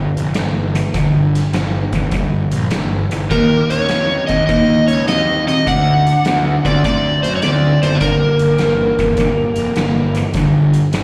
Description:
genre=blues rock power trio and southern rock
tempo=102 BPM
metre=4/4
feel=swing 67% on 8ths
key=G minor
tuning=A4 = 440 Hz
part: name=overdriven electric guitar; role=riff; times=0.0-11.0 s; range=G2 to C4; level=-20 LUFS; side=equal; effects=slapback echo
part: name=fuzz picked electric bass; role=bass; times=0.0-11.0 s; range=F1 to F#2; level=-22 LUFS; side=equal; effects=overdrive
part: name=oversized low-tuned drum kit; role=drums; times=0.2-11.0 s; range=hi-hat, kick drum, snare drum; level=-25 LUFS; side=equal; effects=none
part: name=overdriven slide guitar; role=melody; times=3.3-10.3 s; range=A4 to F#5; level=-19 LUFS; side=equal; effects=slapback echo
part: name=bluesy overdriven lead guitar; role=second line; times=3.3-10.3 s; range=A3 to Eb4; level=-28 LUFS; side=equal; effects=distortion, slapback echo
room=light reverb, studio reverb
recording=live gig heard through the venue's PA, recital hall reverb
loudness=-15 LUFS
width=mono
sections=0.0-11.0 A section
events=none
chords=0.0 G5; 3.3 Eb5; 5.7 D; 8.0 Gm

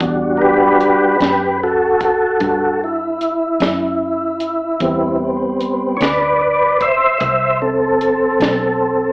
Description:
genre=slow blues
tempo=50 BPM (dotted quarters)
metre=12/8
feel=straight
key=E minor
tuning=A4 = 441 Hz
part: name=tonewheel organ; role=sustained chords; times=0.0-9.1 s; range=G3 to E5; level=-14 LUFS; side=equal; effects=slow rotary speaker, chorus vibrato, plate reverb
part: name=vintage muted fingered electric bass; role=bass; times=0.0-9.1 s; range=B1 to G2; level=-25 LUFS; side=equal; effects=none
part: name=compact cocktail drum kit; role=drums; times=0.0-8.6 s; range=hi-hat, kick drum, snare drum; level=-20 LUFS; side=equal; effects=slapback echo
room=wet club reverb, RT60 0.7 s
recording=live gig heard through the venue's PA, club reverb, AM radio sound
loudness=-13 LUFS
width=side -24 dB against mid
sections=0.0-9.1 A section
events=tonewheel organ solo 0.0-9.1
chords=0.0 Em9; 4.8 Am9

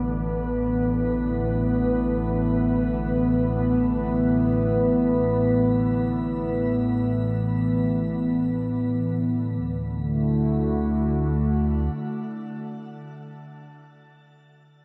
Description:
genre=ambient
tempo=free time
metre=none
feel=none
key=D major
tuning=A4 = 439 Hz
part: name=warbly tape-like pad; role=sustained chords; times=0.0-13.0 s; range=A2 to B4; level=-24 LUFS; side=equal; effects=chorus, built-in reverb, shimmer reverb
part: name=warm sub bass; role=bass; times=0.0-11.9 s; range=A1 to D2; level=-35 LUFS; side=equal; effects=none
part: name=organ-like drone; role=drone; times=0.0-12.6 s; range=D3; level=-39 LUFS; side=equal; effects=ensemble chorus, built-in reverb
room=wet spring reverb, RT60 2.6 s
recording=none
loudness=-24 LUFS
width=mono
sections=0.0-9.6 A section; 9.6-12.7 B section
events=fade-out on sub bass 0.0-9.6; fade-out on synth drone 0.0-9.6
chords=0.0 Asus2; 9.6 D

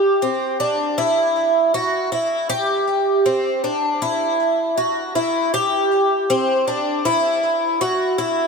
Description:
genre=dream pop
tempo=79 BPM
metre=4/4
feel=straight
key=C lydian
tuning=A4 = 442 Hz
part: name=picked twelve-string acoustic guitar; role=solo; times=0.0-8.5 s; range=C4 to G4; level=-17 LUFS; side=equal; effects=analog chorus, digital delay
room=wet huge ambient reverb, RT60 4.1 s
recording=none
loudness=-17 LUFS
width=side -4 dB against mid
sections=0.0-8.5 A section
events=none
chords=none

